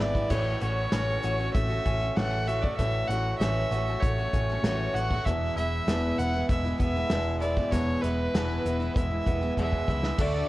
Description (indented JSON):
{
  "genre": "folk rock and heartland rock",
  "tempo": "97 BPM",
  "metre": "4/4",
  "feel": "straight",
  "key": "unclear",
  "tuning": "A4 = 440 Hz",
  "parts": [
    { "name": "clear fiddle", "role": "melody", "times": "0.0-10.5 s", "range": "B4 to F#5", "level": "-31 LUFS", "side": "right 1 dB", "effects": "none" },
    { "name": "picked steel-string acoustic guitar", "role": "accompaniment", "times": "0.0-10.5 s", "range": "E2 to F#4", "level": "-33 LUFS", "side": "left 3 dB", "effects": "none" },
    { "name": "electric guitar through a small old amp", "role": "riff", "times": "0.0-10.5 s", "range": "E2 to F#4", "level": "-33 LUFS", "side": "right 2 dB", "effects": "spring reverb" },
    { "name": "hollow-body short-scale picked electric bass", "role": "bass", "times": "0.0-10.4 s", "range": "E1 to D2", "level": "-30 LUFS", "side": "equal", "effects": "none" },
    { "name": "natural country drum kit", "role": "drums", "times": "0.1-10.3 s", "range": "crash cymbal, hi-hat, kick drum, snare drum", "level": "-30 LUFS", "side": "equal", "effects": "none" },
    { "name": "tonewheel organ", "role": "sustained chords", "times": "10.2-10.5 s", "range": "D4 to D5", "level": "-40 LUFS", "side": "equal", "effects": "overdrive, wide subtle chorus" }
  ],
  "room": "light reverb, small room reverb",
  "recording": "worn, warbling old tape, cassette tape, warbly pitch drift",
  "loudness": "-25 LUFS",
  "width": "side -17 dB against mid",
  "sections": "0.0-10.2 A section",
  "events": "drum fill 0.0-0.3, 9.6-10.2",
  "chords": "0.3 A6; 5.3 E",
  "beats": "| 0.31 0.93 1.55 2.17 | 2.78 3.40 4.02 4.64 | 5.25 5.87 6.49 7.10 | 7.72 8.34 8.95 9.57 | 10.18"
}